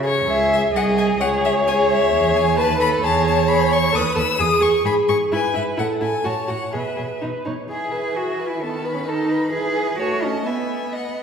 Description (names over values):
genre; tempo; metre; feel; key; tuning
quick classical-period movement for string quartet; 130 BPM; 2/4; straight; C# minor, E major from 3.9 s; A4 = 440 Hz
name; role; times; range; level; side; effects
rich violin; melody; 0.0-11.2 s; C#5 to E6; -24 LUFS; left 5 dB; none
rich violin; second line; 0.0-11.2 s; D#4 to E5; -24 LUFS; equal; none
rich viola; accompaniment; 0.0-11.0 s; D#3 to E5; -22 LUFS; equal; none
rich cello; bass; 0.0-11.2 s; B#1 to G#4; -24 LUFS; right 3 dB; none
room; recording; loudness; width
wet scoring stage reverb, RT60 1.8 s; heard from further back in the room; -17 LUFS; side -7 dB against mid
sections
0.3-7.7 A section; 7.7-11.2 B section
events
none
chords
0.3 C#m; 0.7 G#/B#; 1.2 C#5; 2.1 E; 2.6 B7/D#; 3.0 E; 3.9 B; 4.4 E; 4.9 N.C.; 5.3 E; 5.8 A5; 6.3 F#m/A; 6.7 E5/B; 7.2 N.C.; 7.7 E; 8.6 B7/D#; 9.5 E; 10.0 F#m/A; 10.5 E/B